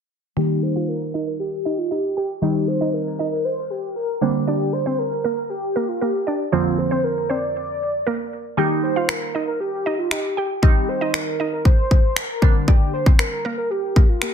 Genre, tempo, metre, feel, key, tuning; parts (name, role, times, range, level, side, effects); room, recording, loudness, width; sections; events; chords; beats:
dance-pop; 117 BPM; 4/4; straight; Eb major; A4 = 440 Hz
mallet-like synth pluck; melody; 0.4-14.3 s; Bb3 to G5; -26 LUFS; right 3 dB; chorus, sidechain pumping, low-pass filter, dub echo
warm velvety synth lead; melody; 0.4-14.3 s; F4 to D5; -24 LUFS; left 1 dB; chorus, low-pass filter, dub echo
glassy wavetable pluck; accompaniment; 0.4-14.3 s; F2 to Eb4; -24 LUFS; right 2 dB; chorus, low-pass filter
house drum kit; drums; 9.1-14.3 s; finger snaps, kick drum; -16 LUFS; equal; soft clipping on snare
light reverb, digital ambience; dense, heavily limited modern master; -18 LUFS; side -8 dB against mid
0.4-14.3 A section
filter sweep 0.4-14.3
0.4 Eb; 2.4 Cm; 4.2 Gm; 6.5 Bbadd9/F; 8.6 Eb; 10.6 Cm; 12.4 Gm
| 0.37 0.89 1.40 1.91 | 2.42 2.94 3.45 3.96 | 4.47 4.99 5.50 6.01 | 6.53 7.04 7.55 8.06 | 8.58 9.09 9.60 10.12 | 10.63 11.14 11.65 12.17 | 12.68 13.19 13.71 14.22